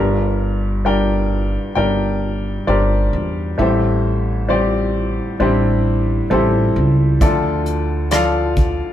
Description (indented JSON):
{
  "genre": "acoustic folk-pop ballad",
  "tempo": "66 BPM",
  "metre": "4/4",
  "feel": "straight",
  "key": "unclear",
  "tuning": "A4 = 440 Hz",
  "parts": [
    { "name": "clear upright piano", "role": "melody", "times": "0.0-8.9 s", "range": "G1 to G5", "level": "-18 LUFS", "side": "left 1 dB", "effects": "plate reverb" },
    { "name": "upright bass", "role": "bass", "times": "0.0-8.8 s", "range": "G1 to E2", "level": "-19 LUFS", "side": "equal", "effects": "none" },
    { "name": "soft brush drum kit", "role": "drums", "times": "7.2-8.8 s", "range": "hi-hat, kick drum, rim click", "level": "-17 LUFS", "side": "equal", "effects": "none" }
  ],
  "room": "moderate studio reverb, RT60 0.8 s",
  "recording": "heard from further back in the room",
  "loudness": "-15 LUFS",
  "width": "side -11 dB against mid",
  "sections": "0.0-8.9 A section",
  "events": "none",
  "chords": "0.0 Gm; 3.6 Am7; 7.2 Dmadd9"
}